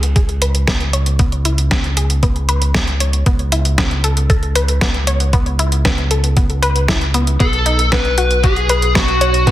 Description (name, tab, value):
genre	synthwave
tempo	116 BPM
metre	4/4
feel	straight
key	unclear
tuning	A4 = 438 Hz
part	wide unison pluck	arpeggios	0.0-9.5 s	B3 to C#5	-21 LUFS	left 2 dB	digital delay
part	round analog bass	bass	0.0-9.5 s	B1 to C#2	-16 LUFS	equal	sidechain pumping
part	detuned 8-bit digital drum machine	drums	0.0-9.5 s	hi-hat, snare drum	-19 LUFS	right 1 dB	none
part	electronic kick drum	drums	0.2-9.5 s	none	-16 LUFS	equal	none
part	lead guitar through a small cranked amp	melody	7.4-9.5 s	D#4 to B4	-16 LUFS	left 1 dB	overdrive, digital delay
room	light reverb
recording	dense, heavily limited modern master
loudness	-13 LUFS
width	side -14 dB against mid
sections	0.0-9.5 A section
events	none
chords	0.0 C#7(no3); 3.3 Aadd9/C#; 7.4 B5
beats	0.16 0.68 | 1.19 1.71 2.23 2.75 | 3.26 3.78 4.30 4.82 | 5.33 5.85 6.37 6.88 | 7.40 7.92 8.44 8.95 | 9.47